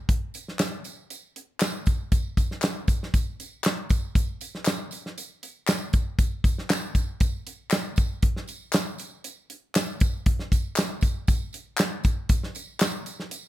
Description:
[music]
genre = soul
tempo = 118 BPM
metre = 4/4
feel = straight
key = none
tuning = none
[part]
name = natural country drum kit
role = drums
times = 0.1-13.4 s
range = hi-hat, kick drum, snare drum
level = -24 LUFS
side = equal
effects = none
[part]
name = tambourine and handclaps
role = percussion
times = 0.3-13.4 s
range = none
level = -33 LUFS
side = left 2 dB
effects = none
[sound]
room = light reverb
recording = none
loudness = -24 LUFS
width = side -15 dB against mid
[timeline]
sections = 0.0-13.5 A section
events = none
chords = none

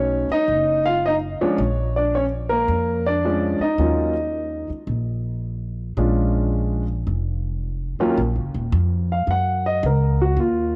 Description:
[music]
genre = jazz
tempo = 110 BPM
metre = 4/4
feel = swing 67% on 8ths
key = Eb minor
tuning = A4 = 439 Hz
[part]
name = warm grand piano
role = melody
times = 0.0-10.8 s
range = Eb2 to Gb5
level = -23 LUFS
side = equal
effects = cassette tape
[part]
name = upright bass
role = bass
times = 0.0-10.8 s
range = Eb1 to Gb2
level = -25 LUFS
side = equal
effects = none
[sound]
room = light reverb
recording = home recording on cassette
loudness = -22 LUFS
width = mono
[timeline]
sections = 0.0-8.2 A section; 8.2-10.8 B section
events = grand piano solo 8.2-10.8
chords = 0.0 B; 1.6 Bb(#9); 3.8 Eb5; 6.0 Bb7#9; 8.2 Ebm7

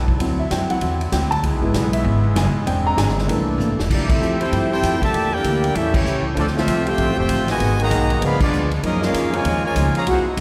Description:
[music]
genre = jazz, big band swing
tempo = 195 BPM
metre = 4/4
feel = swing 62% on 8ths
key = unclear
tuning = A4 = 439 Hz
[part]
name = picked steel-string acoustic guitar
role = accompaniment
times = 0.0-10.4 s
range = Gb2 to A4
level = -30 LUFS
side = equal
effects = none
[part]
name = muted trombone section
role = sustained chords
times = 0.0-10.4 s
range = Bb2 to A4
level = -34 LUFS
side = equal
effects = none
[part]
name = upright bass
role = bass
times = 0.0-10.4 s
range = E1 to G2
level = -24 LUFS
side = equal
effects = none
[part]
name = swinging big-band drum kit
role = drums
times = 0.1-10.4 s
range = crash cymbal, hi-hat, kick drum, ride cymbal, snare drum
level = -28 LUFS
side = equal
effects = none
[part]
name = warm concert grand piano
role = accompaniment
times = 0.2-3.8 s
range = E3 to Bb5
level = -25 LUFS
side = equal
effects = none
[part]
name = bright trumpet section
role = melody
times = 3.9-10.3 s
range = A3 to Cb6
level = -25 LUFS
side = equal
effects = none
[part]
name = warm trombone section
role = second line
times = 3.9-10.2 s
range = Bb2 to G4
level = -25 LUFS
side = equal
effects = none
[sound]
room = wet scoring stage reverb, RT60 2.1 s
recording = heard from further back in the room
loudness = -19 LUFS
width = mono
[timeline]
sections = 0.0-3.9 A section; 3.9-10.4 B section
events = grand piano solo 0.0-3.9; drum fill 3.6-3.9; band accent 4.0, 5.9, 8.4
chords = 0.2 D9; 1.4 C#m7; 2.7 E7alt; 3.3 C13; 3.9 Fmaj9; 5.1 Em7b5; 5.7 A7; 6.4 Dm9; 7.6 Abm7; 8.2 Db7b9; 8.8 Gbmaj13

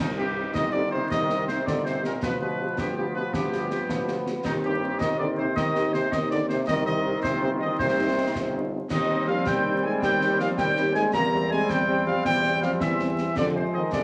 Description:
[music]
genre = military-style march for wind band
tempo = 108 BPM (dotted quarters)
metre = 6/8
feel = straight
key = C minor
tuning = A4 = 444 Hz
[part]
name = warm cornet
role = melody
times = 0.0-14.0 s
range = Eb4 to Bb5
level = -31 LUFS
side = equal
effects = none
[part]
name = warm euphonium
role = second line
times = 0.0-14.0 s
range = Eb2 to Bb3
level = -33 LUFS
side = equal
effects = none
[part]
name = warm woodwind section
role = second line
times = 0.0-14.0 s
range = Eb4 to Bb5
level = -35 LUFS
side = equal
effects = none
[part]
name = bright trombone section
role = sustained chords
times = 0.0-14.0 s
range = Eb3 to C4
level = -32 LUFS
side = equal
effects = none
[part]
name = warm tuba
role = bass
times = 0.0-14.0 s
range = G1 to F2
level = -33 LUFS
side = equal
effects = none
[part]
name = mellow French horn section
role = accompaniment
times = 0.2-13.8 s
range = G3 to G4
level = -37 LUFS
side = equal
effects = none
[part]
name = concert snare drum, concert bass drum and clash cymbals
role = drums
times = 0.6-14.0 s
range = none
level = -35 LUFS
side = equal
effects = none
[sound]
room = wet large studio reverb, RT60 0.9 s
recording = vinyl crackle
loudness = -25 LUFS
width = mono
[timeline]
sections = 0.0-14.0 A section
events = none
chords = 0.0 Cm; 2.2 G7/D; 4.4 Cm/Eb; 6.7 Cm; 8.9 Cm/Eb; 11.1 C7/E; 13.4 Fm

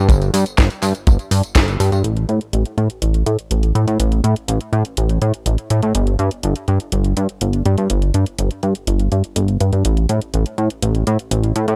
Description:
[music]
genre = italo disco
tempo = 123 BPM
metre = 4/4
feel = straight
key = unclear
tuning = A4 = 438 Hz
[part]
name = chorused synth bass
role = bass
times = 0.0-11.8 s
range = G1 to A2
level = -18 LUFS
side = equal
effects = none
[part]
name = house drum kit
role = drums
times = 0.1-11.8 s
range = handclaps, hi-hat, snare drum, tambourine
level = -27 LUFS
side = equal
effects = none
[part]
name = kick drum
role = drums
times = 0.1-1.7 s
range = none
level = -14 LUFS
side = equal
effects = none
[sound]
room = little or no reverb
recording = dry, close 1970s-style studio recording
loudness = -18 LUFS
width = mono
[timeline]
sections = 0.0-2.0 A section; 2.0-11.8 B section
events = band accent 1.6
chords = none

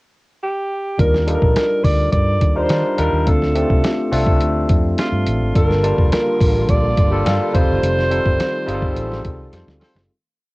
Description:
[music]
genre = polished 1980s jazz-funk pop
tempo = 105 BPM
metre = 4/4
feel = straight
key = unclear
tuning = A4 = 442 Hz
[part]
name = breathy alto saxophone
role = melody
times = 0.4-9.5 s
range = F4 to D5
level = -21 LUFS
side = right 1 dB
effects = none
[part]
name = barky tine electric piano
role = accompaniment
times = 1.0-10.1 s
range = G3 to A5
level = -20 LUFS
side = left 1 dB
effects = overdrive, lush chorus
[part]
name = vintage muted fingered electric bass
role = bass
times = 1.0-10.1 s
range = F1 to Eb3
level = -20 LUFS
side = equal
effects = none
[part]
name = lo-fi sampler-style drum kit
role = drums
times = 1.0-10.1 s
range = hi-hat, kick drum, snare drum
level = -18 LUFS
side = equal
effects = cassette tape
[part]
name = warm studio string section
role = sustained chords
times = 5.5-10.1 s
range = D3 to F4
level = -29 LUFS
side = equal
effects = none
[part]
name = dark horn section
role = second line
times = 8.4-10.0 s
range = C4 to C5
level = -34 LUFS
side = right 1 dB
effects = none
[sound]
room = light reverb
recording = home recording on cassette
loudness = -15 LUFS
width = side -22 dB against mid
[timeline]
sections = 0.0-1.0 pickup bar; 1.0-10.1 pre-chorus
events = fade-out 7.8-10.1; band accent 7.8-10.1; drum fill 9.5-10.1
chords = 0.0 N.C.; 1.0 Ebmaj7; 3.3 Dm7; 5.6 Gm7; 7.5 F7

